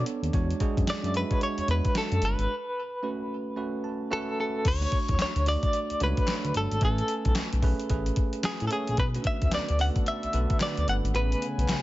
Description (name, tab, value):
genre	R&B, new jack swing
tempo	111 BPM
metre	4/4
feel	swing 62% on 16ths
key	unclear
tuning	A4 = 441 Hz
part	direct-recorded clean electric guitar	melody	0.0-11.8 s	G#4 to F#5	-30 LUFS	left 1 dB	tremolo
part	bell-like tine electric piano	accompaniment	0.0-11.8 s	G#3 to A5	-33 LUFS	right 3 dB	none
part	smooth synth bass	bass	0.0-11.8 s	G1 to A2	-27 LUFS	equal	none
part	crisp 8-bit digital drum machine	drums	0.1-11.8 s	crash cymbal, hi-hat, kick drum, snare drum	-29 LUFS	equal	none
part	group handclap	percussion	5.2-11.8 s	none	-41 LUFS	left 3 dB	none
part	chorused pulse-width pad	sustained chords	9.0-11.8 s	C#3 to G#5	-36 LUFS	equal	none
room	digital ambience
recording	nothing above 7.7 kHz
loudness	-25 LUFS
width	side -16 dB against mid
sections	0.0-4.7 A section; 4.7-11.8 B section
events	break 2.5-4.7; tine electric piano fill 3.6-4.7; kick muted 11.1-11.8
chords	0.3 E13; 2.5 A69; 4.7 Dmaj7; 6.8 Amaj9; 9.0 Bm7; 11.1 Amaj9